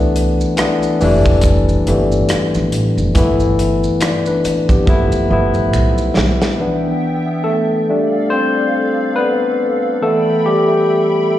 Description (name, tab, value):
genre	R&B, neo-soul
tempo	70 BPM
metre	4/4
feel	swing 57% on 16ths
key	G mixolydian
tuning	A4 = 440 Hz
part	barky tine electric piano	accompaniment	0.0-11.4 s	E3 to D5	-15 LUFS	left 1 dB	overdrive, slapback echo
part	upright bass	bass	0.0-6.4 s	F1 to G2	-17 LUFS	right 1 dB	none
part	warm soul drum kit	drums	0.2-6.6 s	hi-hat, kick drum, rim click, snare drum	-17 LUFS	equal	none
part	maracas and finger snaps	percussion	0.4-6.6 s	none	-32 LUFS	right 3 dB	slapback echo
part	hollow soft pad	sustained chords	6.6-11.4 s	B3 to B5	-21 LUFS	equal	ensemble chorus
room	studio ambience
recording	live gig heard through the venue's PA, recital hall reverb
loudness	-13 LUFS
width	side -12 dB against mid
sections	0.0-6.6 A section; 6.6-11.4 B section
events	drum fill 4.9-6.6; tine electric piano solo 6.6-11.4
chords	0.0 Cmaj7; 1.0 F6; 3.2 G69; 4.9 G9; 6.6 Emadd11; 7.9 F6; 10.0 G69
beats	0.59 1.44 2.30 | 3.16 4.01 4.87 5.73 | 6.59 7.44 8.30 9.16 | 10.02 10.87